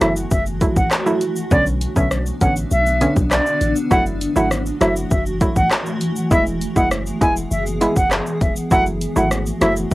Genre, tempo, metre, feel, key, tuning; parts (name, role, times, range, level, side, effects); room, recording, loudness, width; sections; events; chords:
dancehall; 100 BPM; 4/4; straight; F# minor; A4 = 441 Hz
silver concert flute; melody; 0.0-9.9 s; D5 to G#5; -20 LUFS; equal; cassette tape
hollow square pluck; accompaniment; 0.0-9.8 s; D3 to E4; -20 LUFS; right 1 dB; chorus, sidechain pumping, cassette tape
granular cloud pad; sustained chords; 0.0-9.9 s; D3 to G#4; -24 LUFS; equal; built-in reverb, sidechain pumping, cassette tape
warm 808-style bass; bass; 0.0-9.9 s; E1 to B1; -23 LUFS; equal
deep house drum kit; drums; 0.0-9.9 s; handclaps, hi-hat, kick drum, rim click, shaker; -20 LUFS; equal; cassette tape
light reverb; home recording on cassette; -16 LUFS; side -18 dB against mid
0.0-9.9 A section
0.0 F#m7; 1.5 Bmadd9; 3.9 F#m7; 6.3 E; 8.7 F#m7